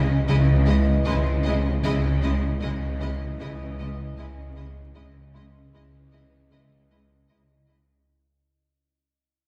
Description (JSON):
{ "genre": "cinematic, suspense film score", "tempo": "77 BPM", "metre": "4/4", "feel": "straight", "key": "unclear", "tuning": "A4 = 437 Hz", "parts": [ { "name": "glass harmonica", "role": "sustained chords", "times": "0.0-8.0 s", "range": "E4 to D#5", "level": "-44 LUFS", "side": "equal", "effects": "none" }, { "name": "mellow French horn section", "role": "sustained chords", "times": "0.0-7.7 s", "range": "E3 to D#5", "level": "-37 LUFS", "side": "equal", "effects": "none" }, { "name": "rich studio cello section", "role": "riff", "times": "0.0-7.9 s", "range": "C#3 to C#4", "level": "-31 LUFS", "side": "equal", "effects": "none" }, { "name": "rich studio cello section", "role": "bass", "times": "0.0-8.0 s", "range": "C#3", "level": "-30 LUFS", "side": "equal", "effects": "none" }, { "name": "warm studio double bass section", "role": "bass", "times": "0.0-8.0 s", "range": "C#2", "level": "-27 LUFS", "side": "equal", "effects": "none" }, { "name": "bowed-like drone", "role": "drone", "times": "0.0-8.0 s", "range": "C#2", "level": "-39 LUFS", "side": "equal", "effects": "none" }, { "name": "rich studio violin section", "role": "melody", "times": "0.3-7.8 s", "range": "D#5", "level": "-40 LUFS", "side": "equal", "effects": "none" }, { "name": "rich studio violin section", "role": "second line", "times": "0.3-7.8 s", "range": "E4", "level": "-40 LUFS", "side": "equal", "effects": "none" }, { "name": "warm studio viola section", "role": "accompaniment", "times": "0.3-7.8 s", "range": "G#3", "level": "-35 LUFS", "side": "equal", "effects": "none" }, { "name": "concert harp", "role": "texture", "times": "1.1-8.1 s", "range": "B#4 to B#5", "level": "-44 LUFS", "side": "equal", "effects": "none" } ], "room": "wet scoring stage reverb, RT60 1.5 s", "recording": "heard from further back in the room, vinyl crackle", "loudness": "-23 LUFS", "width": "mono", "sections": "0.0-8.1 A section", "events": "fade-out 0.0-8.1", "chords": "0.0 C#madd9", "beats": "0.29 1.06 | 1.84 2.62 3.40 4.18 | 4.96 5.74 6.52 7.30" }